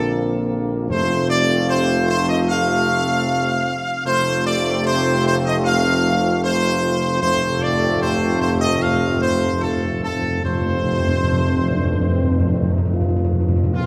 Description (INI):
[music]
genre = classical, ceremonial fanfare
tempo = 76 BPM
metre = 4/4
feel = straight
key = unclear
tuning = A4 = 443 Hz
[part]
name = warm trumpet section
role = melody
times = 0.0-13.9 s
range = F4 to F5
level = -23 LUFS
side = equal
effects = none
[part]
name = mellow French horn section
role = sustained chords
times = 0.0-13.9 s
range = F3 to F4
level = -28 LUFS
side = equal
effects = none
[part]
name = warm trombone section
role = sustained chords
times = 0.0-13.9 s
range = C3 to C4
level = -30 LUFS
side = equal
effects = none
[part]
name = mellow tuba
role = bass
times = 0.0-13.9 s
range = F1 to Bb1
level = -25 LUFS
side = equal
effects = none
[part]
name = timpani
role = percussion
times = 0.9-2.0, 7.2-13.9 s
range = F2 to Bb2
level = -24 LUFS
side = equal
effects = none
[sound]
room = wet concert hall reverb, RT60 2.2 s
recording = none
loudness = -19 LUFS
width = mono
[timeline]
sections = 0.0-13.7 A section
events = timpani fill 7.2-13.7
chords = 0.0 Bbadd9; 0.9 F